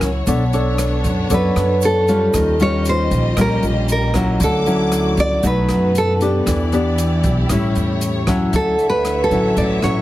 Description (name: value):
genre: bossa nova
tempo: 116 BPM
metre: 4/4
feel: straight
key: D major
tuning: A4 = 439 Hz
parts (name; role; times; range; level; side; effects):
- nylon-string guitar; accompaniment; 0.0-10.0 s; A2 to C#5; -19 LUFS; left 2 dB; none
- warm symphonic string section; sustained chords; 0.0-10.0 s; A3 to D6; -27 LUFS; left 1 dB; none
- upright bass; bass; 0.0-10.0 s; A1 to F#2; -21 LUFS; right 1 dB; none
- open jazz drum kit; drums; 0.0-9.9 s; hi-hat, kick drum, rim click; -25 LUFS; equal; none
- egg shaker; percussion; 0.0-8.5 s; none; -35 LUFS; right 7 dB; none
- nylon-string guitar; melody; 1.3-10.0 s; A4 to D5; -18 LUFS; right 1 dB; plate reverb
room: light reverb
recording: heavily compressed radio sound, multiband compression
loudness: -14 LUFS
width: side -15 dB against mid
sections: 0.0-8.5 A section; 8.5-10.0 B section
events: nylon-string guitar solo 0.0-8.5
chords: 0.3 Bm9; 2.3 Eb9; 4.4 Dmaj9; 5.4 B7; 6.5 Em7; 7.5 A7; 8.5 Dmaj9